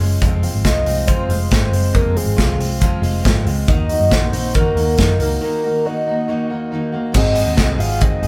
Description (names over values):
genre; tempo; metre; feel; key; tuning
jangly indie pop; 138 BPM; 4/4; straight; unclear; A4 = 440 Hz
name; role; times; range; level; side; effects
picked steel-string acoustic guitar; accompaniment; 0.0-8.3 s; Ab2 to Gb4; -27 LUFS; equal; none
direct-recorded clean electric guitar; arpeggios; 0.0-8.3 s; F2 to Ab4; -29 LUFS; equal; none
vintage muted picked electric bass; bass; 0.0-8.3 s; F1 to Gb2; -22 LUFS; equal; none
modern studio drum kit; drums; 0.0-8.3 s; crash cymbal, hi-hat, kick drum, snare drum; -20 LUFS; equal; none
soft octave-layered synth lead; melody; 0.7-8.3 s; Ab4 to F5; -23 LUFS; equal; chorus, phaser
warm upright piano; accompaniment; 7.1-8.3 s; C4 to Ab4; -29 LUFS; equal; none
room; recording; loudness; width
moderate stone room reverb, RT60 1.0 s; band playing live in one room; -17 LUFS; mono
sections
0.0-7.1 A section; 7.1-8.3 B section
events
break 5.4-7.1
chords
0.2 Fm; 3.7 Ebm; 7.1 Ab7